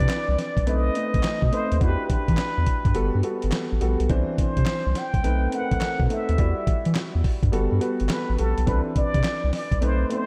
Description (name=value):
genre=R&B, new jack swing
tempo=105 BPM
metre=4/4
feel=swing 65% on 16ths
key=unclear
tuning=A4 = 441 Hz
part: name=trumpet with plunger mute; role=melody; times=0.0-10.3 s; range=A4 to G5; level=-31 LUFS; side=equal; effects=diffuse ambient delay
part: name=warm concert grand piano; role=accompaniment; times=0.0-10.3 s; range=E3 to D5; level=-30 LUFS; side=equal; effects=none
part: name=round analog bass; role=bass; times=0.0-10.1 s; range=G1 to E3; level=-26 LUFS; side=equal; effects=none
part: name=dusty soul sampler-style drum kit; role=drums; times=0.0-10.3 s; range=handclaps, hi-hat, kick drum, snare drum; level=-27 LUFS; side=equal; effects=none
room=moderate lush hall reverb, RT60 1.8 s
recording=dreamy mix soaked in reverb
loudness=-23 LUFS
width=mono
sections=0.0-10.3 A section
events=none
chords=0.0 Cmaj9; 0.7 B7b9; 1.8 Em7; 3.0 Gmaj9; 4.1 Cadd9; 5.2 B7b9; 6.4 Em9; 7.5 Gmaj9; 8.7 Cmaj9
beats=0.10 0.67 1.24 | 1.81 2.38 2.95 3.52 | 4.10 4.67 5.24 5.81 | 6.38 6.95 7.53 8.10 | 8.67 9.24 9.81